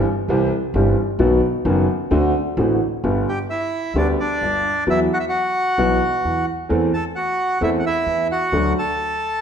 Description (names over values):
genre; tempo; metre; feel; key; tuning
tango; 131 BPM; 4/4; rubato; G major from 3.0 s; A4 = 440 Hz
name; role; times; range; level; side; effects
warm concert grand piano; accompaniment; 0.0-8.7 s; F#1 to A4; -20 LUFS; left 1 dB; none
upright bass; bass; 0.3-8.7 s; F#1 to E2; -25 LUFS; right 1 dB; none
bandoneon; melody; 3.3-9.4 s; D4 to A5; -20 LUFS; equal; none
room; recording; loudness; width
wet recital hall reverb, RT60 1.4 s; recorded in a church or concert hall; -17 LUFS; side -7 dB against mid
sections
0.0-3.0 A section; 3.0-9.4 B section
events
none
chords
0.0 C; 1.2 B; 2.1 D7; 3.0 G; 4.9 Esus2; 6.7 Am/E; 8.5 D